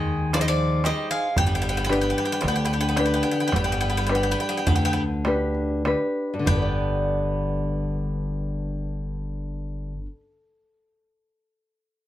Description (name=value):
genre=greek folk, Greek bouzouki band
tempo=96-118 BPM (eighths)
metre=9/8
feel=straight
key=unclear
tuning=A4 = 440 Hz
part: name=Greek bouzouki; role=melody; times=0.0-10.1 s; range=D5 to G5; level=-27 LUFS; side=left 1 dB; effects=none
part: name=Greek bouzouki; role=second line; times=0.0-10.1 s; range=F3 to B3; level=-31 LUFS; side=right 2 dB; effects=none
part: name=nylon-string guitar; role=accompaniment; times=0.0-10.2 s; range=G2 to D5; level=-26 LUFS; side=left 2 dB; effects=none
part: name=upright bass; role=bass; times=0.0-10.1 s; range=G1 to Eb2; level=-28 LUFS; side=equal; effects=none
part: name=darbuka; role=percussion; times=0.3-7.0 s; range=none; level=-27 LUFS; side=right 2 dB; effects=none
room=moderate studio reverb, RT60 0.6 s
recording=none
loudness=-22 LUFS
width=side -13 dB against mid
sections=0.0-6.5 A section; 6.5-12.1 B section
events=slowing down 0.0-6.5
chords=0.0 Ab; 1.4 G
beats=0.34 0.85 | 1.38 1.90 2.44 2.98 3.54 4.10 4.67 5.26 5.86 | 6.47 7.08 7.70 8.32 8.95 9.57 10.19